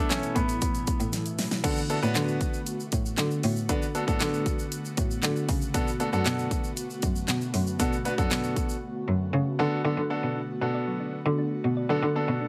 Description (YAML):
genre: dance-pop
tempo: 117 BPM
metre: 4/4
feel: straight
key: D major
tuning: A4 = 440 Hz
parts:
  - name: clear baby grand piano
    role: melody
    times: 0.0-1.1 s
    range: B3 to C#4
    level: -34 LUFS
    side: equal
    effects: tape echo
  - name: clear concert grand piano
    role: accompaniment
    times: 0.0-12.4 s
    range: A3 to B4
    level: -33 LUFS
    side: equal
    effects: sidechain pumping
  - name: airy breathy pad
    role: sustained chords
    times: 0.0-12.5 s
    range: B2 to F#4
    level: -37 LUFS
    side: equal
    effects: chorus, sidechain pumping
  - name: clear cello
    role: bass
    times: 0.0-12.5 s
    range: F#2 to D3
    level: -31 LUFS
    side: equal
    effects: sidechain pumping
  - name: pop drum kit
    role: drums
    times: 0.1-8.7 s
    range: crash cymbal, handclaps, hi-hat, kick drum, snare drum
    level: -31 LUFS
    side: equal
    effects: none
  - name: tube shaker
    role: percussion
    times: 0.1-8.8 s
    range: none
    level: -44 LUFS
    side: equal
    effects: none
  - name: thumb-piano-like synth pluck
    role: arpeggios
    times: 9.8-12.5 s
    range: F#3 to D5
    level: -40 LUFS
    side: equal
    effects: none
room: small room ambience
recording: none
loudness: -28 LUFS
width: mono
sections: 0.0-1.6 A section; 1.6-9.8 B section; 9.8-12.5 C section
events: drum fill 1.1-1.6; silent gap 8.8-9.8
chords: 0.0 Asus2; 1.6 D6; 5.7 Bm7; 9.6 D6